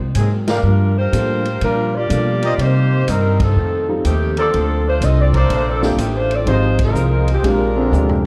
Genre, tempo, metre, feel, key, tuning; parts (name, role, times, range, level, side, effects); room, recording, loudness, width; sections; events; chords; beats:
jazz, big band swing; 123 BPM; 4/4; swing 67% on 8ths; Bb major; A4 = 440 Hz
upright bass; bass; 0.0-8.3 s; Ab1 to C3; -19 LUFS; equal
swinging big-band drum kit; drums; 0.1-8.3 s; hi-hat, kick drum, ride cymbal, snare drum, toms; -28 LUFS; equal
mellow saxophone section; melody; 0.2-8.3 s; Eb3 to Eb5; -22 LUFS; equal
vintage hollow-body jazz guitar; accompaniment; 0.2-8.3 s; F2 to C5; -27 LUFS; equal
bright trumpet section; stabs; 0.5-7.4 s; F4 to F5; -29 LUFS; equal
warm concert grand piano; accompaniment; 1.1-7.7 s; G3 to A4; -26 LUFS; equal
clear trombone section; second line; 7.8-8.2 s; D3 to C4; -22 LUFS; equal
moderate recital hall reverb, RT60 1.6 s; dark, warm production; -16 LUFS; mono
0.0-8.3 A section
band accent 0.4, 3.3, 6.7; drum fill 7.9-8.3
0.0 Ab9; 0.6 Gm7; 2.6 Cm7; 3.6 F7; 4.5 Bbmaj9; 6.5 Fm7; 7.4 Bb13
0.15 | 0.63 1.12 1.61 2.09 | 2.58 3.06 3.55 4.04 | 4.52 5.01 5.50 5.98 | 6.47 6.96 7.44 7.93